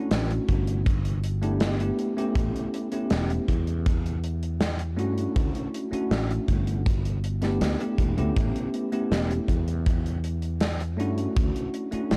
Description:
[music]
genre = vaporwave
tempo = 80 BPM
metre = 4/4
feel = straight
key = D major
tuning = A4 = 440 Hz
[part]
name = bell-like tine electric piano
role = accompaniment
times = 0.0-12.2 s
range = A3 to G4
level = -31 LUFS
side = equal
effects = subtle chorus, analog delay
[part]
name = sustaining fretless electric bass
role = bass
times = 0.1-12.2 s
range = E1 to G2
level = -30 LUFS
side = equal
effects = none
[part]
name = gated 80s drum kit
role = drums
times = 0.1-12.2 s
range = hi-hat, snare drum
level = -31 LUFS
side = equal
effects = none
[part]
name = kick drum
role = drums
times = 0.5-11.5 s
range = none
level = -28 LUFS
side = equal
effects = none
[sound]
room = small room ambience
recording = dark, warm production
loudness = -26 LUFS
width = mono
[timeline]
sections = 0.0-12.2 A section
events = none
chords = 0.0 Dmaj7; 0.9 G6; 2.4 A9; 3.5 Em7; 5.4 Dmaj7; 6.9 G6; 8.4 A9; 9.5 Em7; 11.4 Dmaj7

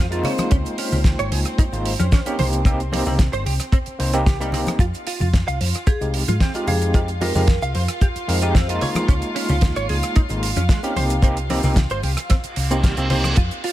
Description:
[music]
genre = nu-disco, nu disco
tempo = 112 BPM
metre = 4/4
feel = straight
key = unclear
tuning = A4 = 444 Hz
[part]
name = dark studio string section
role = sustained chords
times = 0.0-13.7 s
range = C4 to F5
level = -31 LUFS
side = equal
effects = sidechain pumping
[part]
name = direct-recorded clean electric guitar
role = riff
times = 0.0-13.7 s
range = G3 to F5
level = -28 LUFS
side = right 3 dB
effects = ensemble chorus, digital delay
[part]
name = hollow-body short-scale fingered electric bass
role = bass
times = 0.0-13.5 s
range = G1 to Ab2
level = -22 LUFS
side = equal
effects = tube saturation
[part]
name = overdriven tine electric piano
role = accompaniment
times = 0.1-13.4 s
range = Ab3 to C5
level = -26 LUFS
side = equal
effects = medium tremolo, sidechain pumping, digital delay
[part]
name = damped 70s drum kit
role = drums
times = 0.1-13.7 s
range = crash cymbal, hi-hat, rim click, snare drum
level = -27 LUFS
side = right 2 dB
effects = none
[part]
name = maracas, congas and bongos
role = percussion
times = 0.1-13.6 s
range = none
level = -28 LUFS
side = left 1 dB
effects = none
[part]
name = vibraphone with hard mallets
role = melody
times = 0.3-0.5, 5.9-8.7 s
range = C4 to C5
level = -30 LUFS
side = left 1 dB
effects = digital delay
[part]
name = kick drum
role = drums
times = 0.5-13.5 s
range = none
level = -17 LUFS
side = equal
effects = none
[part]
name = reverse cymbal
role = sound effects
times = 12.5-13.4 s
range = none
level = -26 LUFS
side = right 2 dB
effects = none
[sound]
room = studio ambience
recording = none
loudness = -17 LUFS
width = side -14 dB against mid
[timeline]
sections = 0.0-13.7 A section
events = reverse cymbal 12.5-13.4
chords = 0.2 Db69; 2.4 Cm7; 4.8 Fm9; 8.8 Db69; 11.0 Cm7

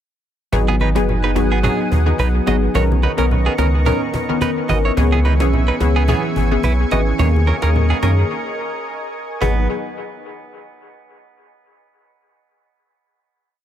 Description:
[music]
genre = afrobeats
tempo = 108 BPM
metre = 4/4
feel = swing 55% on 16ths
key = G# minor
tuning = A4 = 439 Hz
[part]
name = analog pluck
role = accompaniment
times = 0.5-9.6 s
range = D#3 to A#4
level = -20 LUFS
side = left 2 dB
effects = chorus, dub echo
[part]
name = lush unison pad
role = sustained chords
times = 0.5-9.7 s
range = B3 to D#6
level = -27 LUFS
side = left 1 dB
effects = chorus
[part]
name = sub bass with octave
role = bass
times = 0.5-9.7 s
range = F#1 to F#2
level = -16 LUFS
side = equal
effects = none
[part]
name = cajon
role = drums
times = 0.5-9.6 s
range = none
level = -29 LUFS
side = equal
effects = dub echo
[part]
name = congas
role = percussion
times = 0.5-9.7 s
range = none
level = -27 LUFS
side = left 1 dB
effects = dub echo
[part]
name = direct-recorded clean electric guitar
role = riff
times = 0.7-9.7 s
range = B3 to D#5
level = -25 LUFS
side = right 6 dB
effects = dub echo
[sound]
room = light reverb, small room ambience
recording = echo-heavy mix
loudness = -15 LUFS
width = side -10 dB against mid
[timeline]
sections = 0.5-9.4 chorus; 9.4-11.6 final chord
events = break 8.3-9.4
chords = 0.5 G#m7; 2.7 Bmaj9; 5.0 C#m7; 7.2 D#7sus4; 9.4 G#m7

